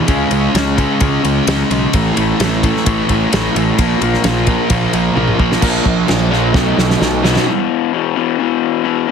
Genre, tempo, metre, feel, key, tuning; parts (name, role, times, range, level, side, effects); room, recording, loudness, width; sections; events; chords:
quiet-loud alternative rock; 130 BPM; 4/4; straight; A4 = 441 Hz
raw garage guitar; riff; 0.0-9.1 s; E2 to C#4; -17 LUFS; left 13 dB; overdrive
thick fuzz guitar; riff; 0.0-7.5 s; A2 to C#4; -18 LUFS; right 10 dB; distortion
fuzz fingered electric bass; bass; 0.1-7.4 s; A1 to C#2; -19 LUFS; equal; overdrive
loose indie drum kit; drums; 0.1-7.5 s; crash cymbal, kick drum, ride cymbal, snare drum, toms; -18 LUFS; equal
raw garage guitar; riff; 5.6-7.5 s; A#2 to D#4; -19 LUFS; right 1 dB; overdrive
small room ambience; heavily compressed radio sound; -12 LUFS; side -6 dB against mid
0.0-5.6 A section; 5.6-7.5 B section; 7.5-9.1 C section
drum fill 5.2-5.6, 6.5-7.5
0.1 C#5; 1.9 A5; 3.8 A#5; 5.6 A#; 6.5 B7; 7.5 E5